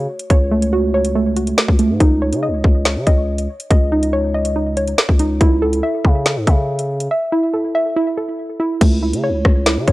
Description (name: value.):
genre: hip hop, drill.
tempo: 141 BPM.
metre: 4/4.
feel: half-time.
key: unclear.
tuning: A4 = 440 Hz.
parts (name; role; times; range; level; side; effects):
soft round pluck; arpeggios; 0.0-9.9 s; A3 to E5; -18 LUFS; right 1 dB; chorus, analog delay.
growling 808-style bass; bass; 0.0-9.9 s; C#2 to C#3; -20 LUFS; equal; none.
drill drum kit; drums; 0.2-9.9 s; crash cymbal, hi-hat, kick drum, rim click, snare drum; -14 LUFS; equal; vintage 12-bit sampler grit.
room: little or no reverb.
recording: dry, gritty hardware recording, transformer saturation.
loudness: -14 LUFS.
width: side -18 dB against mid.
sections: 0.0-8.8 A section; 8.8-9.9 B section.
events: break 7.1-8.8.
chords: 0.0 F#m/C#; 2.0 C#sus2; 5.4 A/C#.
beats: | 0.30 0.73 1.15 1.58 | 2.00 2.43 2.85 3.28 | 3.71 4.13 4.56 4.98 | 5.41 5.83 6.26 6.68 | 7.11 7.54 7.96 8.39 | 8.81 9.24 9.66.